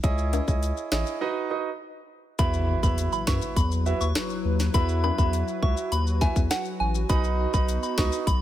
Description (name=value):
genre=dancehall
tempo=102 BPM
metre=4/4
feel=straight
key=unclear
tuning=A4 = 443 Hz
part: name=warm grand piano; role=accompaniment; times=0.0-8.2 s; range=D#4 to E5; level=-30 LUFS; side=right 6 dB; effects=none
part: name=saturated sub bass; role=bass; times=0.0-8.4 s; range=A1 to F#2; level=-26 LUFS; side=equal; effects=none
part: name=island pop drum kit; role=drums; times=0.0-8.4 s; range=hi-hat, kick drum, rim click, snare drum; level=-25 LUFS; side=equal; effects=none
part: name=maracas and timbales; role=percussion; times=0.0-8.4 s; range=none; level=-37 LUFS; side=left 12 dB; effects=none
part: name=soft synth bell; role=melody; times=2.4-8.4 s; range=F#5 to C#6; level=-31 LUFS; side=equal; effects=chorus, phaser, ping-pong delay
part: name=hollow soft pad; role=sustained chords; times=3.0-8.4 s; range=F#3 to B4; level=-34 LUFS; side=left 2 dB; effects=chorus, sidechain pumping
part: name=impact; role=sound effects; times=2.4-4.7 s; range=none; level=-36 LUFS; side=left 1 dB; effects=none
room=digital ambience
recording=none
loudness=-23 LUFS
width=side -12 dB against mid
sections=0.0-2.4 A section; 2.4-8.4 B section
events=break 1.2-2.4; impact 2.4-4.7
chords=0.0 C#madd9; 1.2 B; 2.4 Esus2; 7.1 B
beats=| 0.04 0.62 1.21 1.80 | 2.39 2.98 3.57 4.15 | 4.74 5.33 5.92 6.51 | 7.10 7.68 8.27